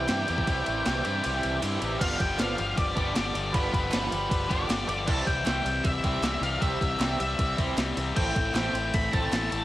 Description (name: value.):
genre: indie rock.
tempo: 156 BPM.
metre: 4/4.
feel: straight.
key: G mixolydian.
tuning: A4 = 441 Hz.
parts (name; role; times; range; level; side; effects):
octave-fuzz lead guitar; melody; 0.0-9.6 s; B4 to B5; -31 LUFS; left 1 dB; distortion, cassette tape, analog delay.
crunchy overdriven guitar; riff; 0.0-9.6 s; G2 to G4; -30 LUFS; left 4 dB; none.
crunchy overdriven guitar; riff; 0.0-9.5 s; E3 to A4; -34 LUFS; right 4 dB; ensemble chorus.
fingered electric bass; bass; 0.0-9.6 s; G1 to G2; -33 LUFS; equal; none.
clean 12-bit digital drum machine; drums; 0.1-9.6 s; crash cymbal, kick drum, ride cymbal, snare drum; -30 LUFS; equal; overdrive, cassette tape.
group handclap; percussion; 0.1-9.4 s; none; -43 LUFS; right 3 dB; none.
shimmering bell with halo; second line; 2.0-9.6 s; B5 to B6; -41 LUFS; right 2 dB; none.
room: little or no reverb.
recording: home recording on cassette.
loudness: -24 LUFS.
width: side -15 dB against mid.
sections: 0.0-2.0 A section; 2.0-9.6 B section.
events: kick and snare drop out 1.2-2.0.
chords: 0.0 C; 2.0 G7; 5.1 C; 8.2 Am7.